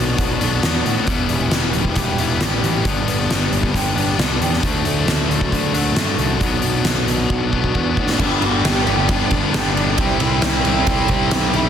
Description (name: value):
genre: quiet-loud alternative rock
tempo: 135 BPM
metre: 4/4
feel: straight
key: unclear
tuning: A4 = 438 Hz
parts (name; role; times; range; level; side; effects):
- electric guitar through a small old amp; arpeggios; 0.0-11.7 s; E2 to G4; -26 LUFS; right 3 dB; analog chorus
- distorted electric guitar; riff; 0.0-11.7 s; G2 to E4; -21 LUFS; left 8 dB; overdrive
- fuzz picked electric bass; bass; 0.0-11.7 s; E1 to A2; -22 LUFS; equal; overdrive
- oversized low-tuned drum kit; drums; 0.2-11.6 s; crash cymbal, hi-hat, kick drum, ride cymbal, snare drum; -20 LUFS; right 1 dB; none
- warm cello; melody; 8.0-11.7 s; C4 to G4; -23 LUFS; right 5 dB; none
room: studio reverb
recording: dense, heavily limited modern master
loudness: -16 LUFS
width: side -8 dB against mid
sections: 0.0-8.2 A section; 8.2-11.7 B section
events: drum fill 7.3-8.2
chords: 0.0 Bm; 1.1 Em; 2.9 G; 4.6 D; 6.4 Bm; 8.2 G; 10.0 C